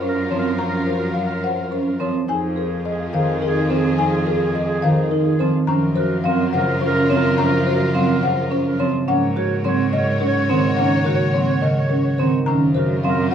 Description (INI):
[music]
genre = classical, minimalist pattern music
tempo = 106 BPM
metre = 3/4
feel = straight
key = unclear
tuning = A4 = 440 Hz
[part]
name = folk marimba with medium mallets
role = melody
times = 0.0-13.3 s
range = Bb4 to Bb5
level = -25 LUFS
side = left 6 dB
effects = none
[part]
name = concert harp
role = accompaniment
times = 0.0-13.3 s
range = Db3 to Db4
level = -22 LUFS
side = left 1 dB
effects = none
[part]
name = warm studio violin section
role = sustained chords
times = 0.0-13.3 s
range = F4 to Db5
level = -29 LUFS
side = left 3 dB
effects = none
[part]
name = vibraphone with medium mallets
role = arpeggios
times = 0.0-13.3 s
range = C4 to C5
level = -23 LUFS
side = right 5 dB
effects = none
[part]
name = rich cello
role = bass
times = 0.0-13.3 s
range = F2 to Ab2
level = -26 LUFS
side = right 2 dB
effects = none
[part]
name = warm clarinet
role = second line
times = 0.1-13.3 s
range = Ab4 to Db5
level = -26 LUFS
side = right 2 dB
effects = none
[sound]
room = wet large studio reverb, RT60 0.8 s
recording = heard from further back in the room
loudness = -17 LUFS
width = side -8 dB against mid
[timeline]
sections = 0.0-13.3 A section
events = none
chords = 0.0 Gbmaj7; 2.3 Fm7; 5.7 Gbmaj7; 9.1 Ab9sus4; 12.5 Gbmaj7